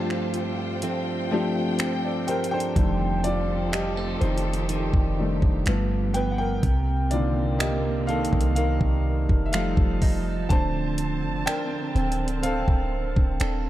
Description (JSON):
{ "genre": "contemporary R&B", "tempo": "62 BPM", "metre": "4/4", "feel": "straight", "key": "unclear", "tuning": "A4 = 441 Hz", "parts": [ { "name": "warm grand piano", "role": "accompaniment", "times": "0.0-13.7 s", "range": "D3 to A5", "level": "-28 LUFS", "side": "left 3 dB", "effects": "none" }, { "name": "warm studio string section", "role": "sustained chords", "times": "0.0-13.7 s", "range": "C3 to A5", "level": "-34 LUFS", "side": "equal", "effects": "none" }, { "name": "direct-recorded clean electric guitar", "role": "arpeggios", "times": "0.0-13.7 s", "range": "F2 to A4", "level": "-29 LUFS", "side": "right 5 dB", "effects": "lush chorus, tape echo" }, { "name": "smooth R&B drum kit", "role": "drums", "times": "0.1-13.6 s", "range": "finger snaps, hi-hat, kick drum", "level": "-25 LUFS", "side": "equal", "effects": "none" }, { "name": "clean 808-style bass", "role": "bass", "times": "2.8-13.7 s", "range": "D1 to C2", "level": "-27 LUFS", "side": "equal", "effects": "none" } ], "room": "digital ambience", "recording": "dark, warm production", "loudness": "-22 LUFS", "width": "side -14 dB against mid", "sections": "0.0-2.8 A section; 2.8-13.7 B section", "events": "break 0.0-2.8; grand piano solo 2.8-13.7", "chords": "0.0 G9sus4; 2.8 F13; 5.7 G7; 6.6 Cm9; 9.5 F7; 10.5 Bbmaj9/D" }